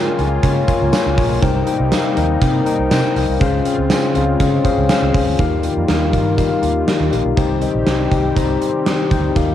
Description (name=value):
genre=1980s-style pop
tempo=121 BPM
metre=4/4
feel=straight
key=Eb mixolydian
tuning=A4 = 440 Hz
part: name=mellow tine electric piano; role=accompaniment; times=0.0-9.5 s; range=C3 to G6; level=-18 LUFS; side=left 6 dB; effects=auto-pan, cassette tape, plate reverb
part: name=warm analog pad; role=sustained chords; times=0.0-9.5 s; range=C3 to G4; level=-23 LUFS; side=right 1 dB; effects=chorus, tremolo, cassette tape, plate reverb
part: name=vintage muted fingered electric bass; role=bass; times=0.2-9.5 s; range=Bb1 to Db3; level=-20 LUFS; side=right 2 dB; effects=none
part: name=gated 80s drum kit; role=drums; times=0.2-9.5 s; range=hi-hat, kick drum, snare drum, tambourine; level=-19 LUFS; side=right 2 dB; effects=none
room=moderate booth ambience, RT60 0.2 s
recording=home recording on cassette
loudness=-14 LUFS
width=side -11 dB against mid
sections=0.0-5.4 A section; 5.4-9.5 B section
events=tine electric piano fill 4.4-5.4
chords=0.0 Bbm7; 1.4 Cm7; 3.4 Dbmaj7; 5.4 Ebadd9; 7.4 Cm